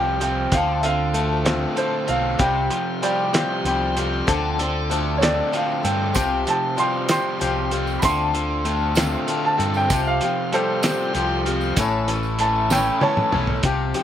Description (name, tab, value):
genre	folk rock and heartland rock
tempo	64 BPM (dotted quarters)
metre	6/8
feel	straight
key	D minor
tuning	A4 = 442 Hz
part	warm upright piano	second line	0.0-13.6 s	A4 to C6	-24 LUFS	right 3 dB	none
part	picked swing-style acoustic guitar	accompaniment	0.0-14.0 s	A2 to A4	-24 LUFS	left 6 dB	none
part	tonewheel organ	sustained chords	0.0-13.6 s	C4 to C#5	-33 LUFS	right 1 dB	slow rotary speaker
part	crunchy overdriven guitar	riff	0.0-14.0 s	A2 to C#4	-26 LUFS	right 1 dB	none
part	fingered electric bass	bass	0.0-13.9 s	A1 to G2	-26 LUFS	equal	none
part	cloth-damped thuddy drum kit	drums	0.2-14.0 s	hi-hat, kick drum, snare drum, toms	-23 LUFS	right 1 dB	none
part	tambourine	percussion	6.1-12.9 s	none	-33 LUFS	right 9 dB	none
room	light reverb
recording	none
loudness	-19 LUFS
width	side -10 dB against mid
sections	0.0-13.6 A section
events	upright piano solo 0.0-13.6; drum fill 12.7-13.6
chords	0.0 Csus4; 0.5 Dm7; 2.4 Csus4; 4.3 Dm7; 6.2 Csus4; 8.0 Dm7; 9.9 Csus4; 11.8 A